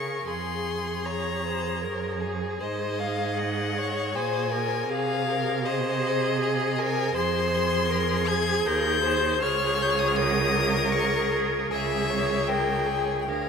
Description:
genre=classical, slow romantic movement for string quartet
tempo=78 BPM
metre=3/4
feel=rubato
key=unclear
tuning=A4 = 440 Hz
part: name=clear violin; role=melody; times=0.0-13.5 s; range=Eb5 to Ab6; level=-30 LUFS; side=left 8 dB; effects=none
part: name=rich violin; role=second line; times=0.0-13.5 s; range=Ab4 to F5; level=-29 LUFS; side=left 3 dB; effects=none
part: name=warm viola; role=accompaniment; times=0.0-13.5 s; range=Ab4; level=-29 LUFS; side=right 1 dB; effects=none
part: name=warm cello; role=bass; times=0.0-13.5 s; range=Db2 to Db3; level=-30 LUFS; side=right 6 dB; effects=none
room=wet cathedral reverb, RT60 6.2 s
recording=in a vast, echoing space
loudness=-23 LUFS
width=side -6 dB against mid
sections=0.0-13.5 A section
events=none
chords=0.3 Fmadd11; 2.6 Ab5; 4.9 Ab/C; 7.1 Fm; 9.4 Db5

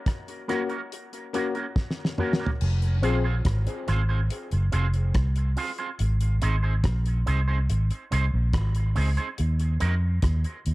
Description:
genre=dub reggae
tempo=71 BPM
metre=4/4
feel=straight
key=F phrygian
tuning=A4 = 445 Hz
part: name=damped 70s drum kit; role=drums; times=0.1-10.7 s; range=crash cymbal, hi-hat, kick drum, rim click, snare drum, toms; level=-28 LUFS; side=equal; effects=none
part: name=electric guitar with an envelope filter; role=accompaniment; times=0.5-9.9 s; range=Bb3 to C5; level=-33 LUFS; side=right 5 dB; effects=dub echo
part: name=warm upright piano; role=stabs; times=0.5-3.2 s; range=Bb3 to Ab4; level=-32 LUFS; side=left 5 dB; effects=dub echo
part: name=vintage muted fingered electric bass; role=bass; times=2.6-10.7 s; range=F1 to F2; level=-23 LUFS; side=equal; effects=none
room=studio ambience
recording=dark, warm production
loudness=-23 LUFS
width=side -19 dB against mid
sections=0.0-2.6 A section; 2.6-10.7 B section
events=drum fill 1.8-2.6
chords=0.0 Gb; 2.6 Fm; 6.0 Ab; 9.4 Eb5

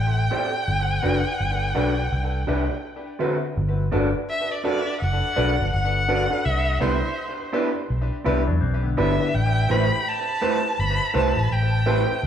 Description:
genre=reggae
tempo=83 BPM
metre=4/4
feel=swing 61% on 16ths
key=unclear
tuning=A4 = 439 Hz
part: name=clear erhu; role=melody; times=0.0-12.3 s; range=C5 to B5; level=-25 LUFS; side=equal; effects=tape echo
part: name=vintage muted fingered electric bass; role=bass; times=0.0-12.3 s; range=F#1 to E2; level=-23 LUFS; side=equal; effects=none
part: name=clear grand piano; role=accompaniment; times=0.3-12.2 s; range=D3 to C5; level=-28 LUFS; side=left 1 dB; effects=tape echo
part: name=electric guitar through a small old amp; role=stabs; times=0.3-12.0 s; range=A3 to E5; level=-26 LUFS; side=right 3 dB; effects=none
part: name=electric guitar with an envelope filter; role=arpeggios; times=8.2-9.3 s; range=D3 to E4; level=-29 LUFS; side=left 5 dB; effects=none
room=moderate large studio reverb, RT60 0.9 s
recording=band playing live in one room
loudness=-20 LUFS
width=side -9 dB against mid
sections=0.0-3.6 A section; 3.6-12.3 B section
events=break 2.8-3.6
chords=0.0 D7sus4; 0.7 Gmaj7; 2.1 Cmaj9; 2.8 D13; 3.6 Gmaj7; 6.4 Cmaj7; 9.3 Am7

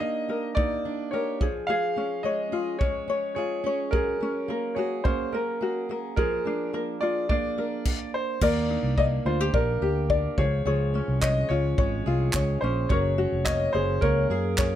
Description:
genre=acoustic pop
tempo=107 BPM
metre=4/4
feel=straight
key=unclear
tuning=A4 = 441 Hz
part: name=bright upright piano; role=melody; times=0.0-14.8 s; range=Bb4 to F5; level=-29 LUFS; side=equal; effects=none
part: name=ukulele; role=accompaniment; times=0.0-14.8 s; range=Db4 to Eb5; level=-29 LUFS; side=left 4 dB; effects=none
part: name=fingerpicked plugged-in steel-string acoustic guitar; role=arpeggios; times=0.0-14.8 s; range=F3 to Ab4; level=-33 LUFS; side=right 8 dB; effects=tape echo
part: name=natural country drum kit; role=drums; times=0.6-14.7 s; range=crash cymbal, handclaps, kick drum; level=-27 LUFS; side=equal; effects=none
part: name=fretless electric bass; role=bass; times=8.4-14.8 s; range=F1 to Gb2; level=-26 LUFS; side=equal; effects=none
room=light reverb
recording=none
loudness=-23 LUFS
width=side -11 dB against mid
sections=0.0-8.4 A section; 8.4-14.8 B section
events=none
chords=0.0 Ebmaj7; 1.4 Db; 3.9 Gbadd9; 6.2 Bb7; 8.4 Ebmaj7; 10.4 Db; 12.9 Gbadd9

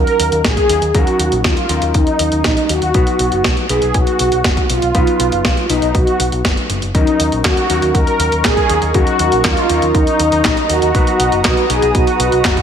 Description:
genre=italo disco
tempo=120 BPM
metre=4/4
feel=straight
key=Eb minor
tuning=A4 = 440 Hz
part: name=mellow synth brass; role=melody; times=0.0-12.6 s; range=Eb4 to Bb4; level=-16 LUFS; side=right 1 dB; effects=chorus, ping-pong delay
part: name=mellow electric guitar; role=stabs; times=0.0-12.6 s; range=Gb3 to B4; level=-23 LUFS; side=left 5 dB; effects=none
part: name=picked electric bass with an envelope filter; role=bass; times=0.0-12.5 s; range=F#1 to Eb2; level=-20 LUFS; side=equal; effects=none
part: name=clean 12-bit digital drum machine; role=drums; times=0.1-12.6 s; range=handclaps, hi-hat, snare drum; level=-19 LUFS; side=equal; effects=gated reverb
part: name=electronic kick drum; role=drums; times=0.4-12.6 s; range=none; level=-17 LUFS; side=equal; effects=none
part: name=warm analog pad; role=sustained chords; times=7.3-12.6 s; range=Bb4 to D#6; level=-21 LUFS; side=equal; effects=chorus
room=light reverb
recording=none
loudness=-12 LUFS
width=side -8 dB against mid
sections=0.0-12.6 A section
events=none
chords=0.0 Ebm7; 2.9 B; 6.9 Ebm7; 10.9 B

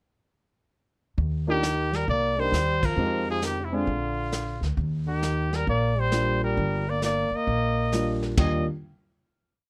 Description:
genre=jazz, small-group swing and bop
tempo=134 BPM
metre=4/4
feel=swing 67% on 8ths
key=Eb major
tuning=A4 = 436 Hz
part: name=upright bass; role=bass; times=1.2-8.7 s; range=G1 to F2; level=-30 LUFS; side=equal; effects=none
part: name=vintage brush drum kit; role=drums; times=1.2-8.7 s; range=brushed snare drum, hi-hat, kick drum, ride cymbal, snare drum, toms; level=-32 LUFS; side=equal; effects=none
part: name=clear trumpet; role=melody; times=1.5-8.7 s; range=Fb4 to Eb5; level=-30 LUFS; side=equal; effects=none
part: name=bright trombone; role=second line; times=1.5-8.6 s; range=Bb2 to Bb3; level=-34 LUFS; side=equal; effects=none
part: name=warm grand piano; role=accompaniment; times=1.5-8.7 s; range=G3 to Bb4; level=-32 LUFS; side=equal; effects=none
room=little or no reverb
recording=none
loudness=-26 LUFS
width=mono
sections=1.2-8.4 A section; 8.4-9.7 final chord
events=band accent 2.8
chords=1.2 Ebmaj9; 2.1 Cm7; 3.0 Fm7; 3.9 Bb; 4.8 Ebmaj9

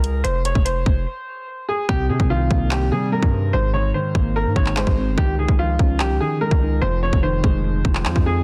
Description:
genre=hip hop, drill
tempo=146 BPM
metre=4/4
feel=half-time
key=unclear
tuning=A4 = 435 Hz
part: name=bright upright piano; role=melody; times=0.0-8.4 s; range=F4 to Db5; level=-27 LUFS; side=equal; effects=low-pass filter, tape echo
part: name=distorted 808-style bass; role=bass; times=0.0-8.4 s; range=F1 to G3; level=-24 LUFS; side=equal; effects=distortion
part: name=drill drum kit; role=drums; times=0.0-8.3 s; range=handclaps, hi-hat, kick drum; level=-22 LUFS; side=equal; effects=vintage 12-bit sampler grit
part: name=felt-muted upright piano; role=accompaniment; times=1.9-8.4 s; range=F2 to Eb4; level=-26 LUFS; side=equal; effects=low-pass filter
room=little or no reverb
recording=dense, heavily limited modern master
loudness=-20 LUFS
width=mono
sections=0.0-8.4 A section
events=break 1.1-1.9; hi-hats muted 1.9-8.4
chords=0.2 F5; 1.9 Cm7; 3.5 Abadd9; 5.2 Dbadd9; 6.8 Fm7

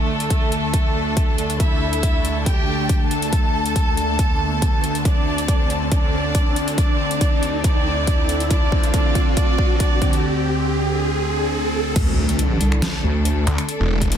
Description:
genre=heavy wobble dubstep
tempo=139 BPM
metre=4/4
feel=half-time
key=unclear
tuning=A4 = 440 Hz
part: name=clear chamber violin section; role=melody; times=0.0-10.2 s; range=A3 to A5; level=-25 LUFS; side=right 1 dB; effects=ping-pong delay
part: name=evolving wavetable pad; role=sustained chords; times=0.0-14.2 s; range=D2 to A4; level=-24 LUFS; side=equal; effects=phaser, built-in reverb, vintage 12-bit sampler grit, sidechain pumping
part: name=riser and impact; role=sound effects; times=1.3-13.7 s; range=none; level=-27 LUFS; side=right 1 dB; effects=none
part: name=clear symphonic string section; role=texture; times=0.0-14.2 s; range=D4 to A5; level=-31 LUFS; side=left 2 dB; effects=sidechain pumping
part: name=dubstep drum kit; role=drums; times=0.2-14.2 s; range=crash cymbal, finger snaps, hi-hat, snare drum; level=-27 LUFS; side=left 2 dB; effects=overdrive
part: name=electronic kick drum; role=drums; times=0.3-14.1 s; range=none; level=-19 LUFS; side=equal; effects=overdrive
part: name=wobble bass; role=bass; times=12.0-13.5 s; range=C2 to D2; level=-18 LUFS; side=equal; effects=chorus, overdrive
part: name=snarling distorted saw bass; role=bass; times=13.5-14.2 s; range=E1 to D2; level=-19 LUFS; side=equal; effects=distortion, overdrive
room=light reverb, digital ambience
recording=dense, heavily limited modern master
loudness=-17 LUFS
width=side -9 dB against mid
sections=0.0-12.0 A section; 12.0-14.2 B section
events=build-up 0.0-12.0; riser 1.3-12.0; drum fill 5.1-10.2; break 10.2-12.0; drop 12.0-14.2; impact 12.0-13.7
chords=0.0 D5

